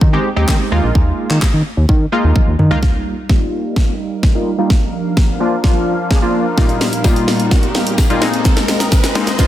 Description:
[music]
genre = dance-pop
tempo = 128 BPM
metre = 4/4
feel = straight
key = Eb major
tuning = A4 = 439 Hz
[part]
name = chorused synth bass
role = bass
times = 0.0-2.8 s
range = Bb1 to Eb3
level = -14 LUFS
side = equal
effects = sidechain pumping
[part]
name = house drum kit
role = drums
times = 0.0-9.5 s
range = handclaps, hi-hat, kick drum, shaker, snare drum, toms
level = -14 LUFS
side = equal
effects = none
[part]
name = funky polysynth comp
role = accompaniment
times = 0.1-9.5 s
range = Bb2 to Ab4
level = -18 LUFS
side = left 1 dB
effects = chorus, sidechain pumping, low-pass filter
[part]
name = sweeping resonant pad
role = sustained chords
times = 3.1-9.5 s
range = Bb2 to F5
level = -22 LUFS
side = right 1 dB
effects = chorus, sidechain pumping, low-pass filter
[part]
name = riser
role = sound effects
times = 4.8-9.5 s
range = none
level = -27 LUFS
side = right 2 dB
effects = none
[part]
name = tambourine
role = percussion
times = 6.6-9.5 s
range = none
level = -33 LUFS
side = left 9 dB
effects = none
[sound]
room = digital ambience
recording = dense, heavily limited modern master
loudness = -12 LUFS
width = side -12 dB against mid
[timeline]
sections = 0.0-2.8 A section; 2.8-9.5 B section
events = drum fill 2.4-2.8, 2.8-9.5; build-up 2.8-9.5; filter sweep 2.8-9.5; riser 4.8-9.5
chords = 0.0 Abmaj7/Eb; 0.7 Bb7sus4; 2.8 Ebadd9; 4.7 Bb; 6.6 Ebadd9/Bb; 8.2 Abadd9

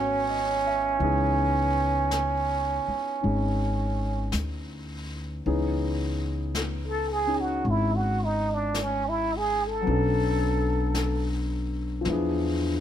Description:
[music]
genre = jazz ballad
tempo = 54 BPM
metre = 4/4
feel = swing 68% on 8ths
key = C# minor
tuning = A4 = 441 Hz
[part]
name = trumpet with plunger mute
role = melody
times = 0.0-11.3 s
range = C#4 to A4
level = -26 LUFS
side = right 3 dB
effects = none
[part]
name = warm concert grand piano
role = accompaniment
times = 0.0-12.8 s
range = E3 to E5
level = -30 LUFS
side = left 3 dB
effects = none
[part]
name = upright bass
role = bass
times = 0.0-12.8 s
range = G#1 to E2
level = -29 LUFS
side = equal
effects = none
[part]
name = jazz brush drum kit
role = drums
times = 1.0-12.8 s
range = brushed snare drum, hi-hat, snare drum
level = -38 LUFS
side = left 4 dB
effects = none
[sound]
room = little or no reverb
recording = none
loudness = -24 LUFS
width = side -10 dB against mid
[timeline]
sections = 0.0-5.4 A section; 5.4-12.8 B section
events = muted trumpet solo 5.4-12.8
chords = 0.0 C#m9; 9.9 Bm9; 12.1 E7b9

